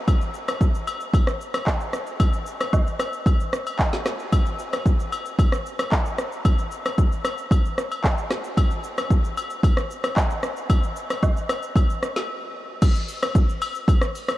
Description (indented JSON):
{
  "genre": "amapiano",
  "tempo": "113 BPM",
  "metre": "4/4",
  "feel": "straight",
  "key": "none",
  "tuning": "none",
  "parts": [
    { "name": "deep house drum kit", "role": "drums", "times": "0.1-14.4 s", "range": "crash cymbal, handclaps, hi-hat, kick drum, rim click, shaker, snare drum", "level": "-21 LUFS", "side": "equal", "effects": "none" },
    { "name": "agogo bells and woodblock", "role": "percussion", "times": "0.1-14.4 s", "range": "none", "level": "-30 LUFS", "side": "left 3 dB", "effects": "none" }
  ],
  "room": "light reverb, digital ambience",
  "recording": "none",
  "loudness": "-20 LUFS",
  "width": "side -15 dB against mid",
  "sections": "0.0-12.8 A section; 12.8-14.4 B section",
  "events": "break 12.3-12.8; drop 12.8-14.4",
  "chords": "none"
}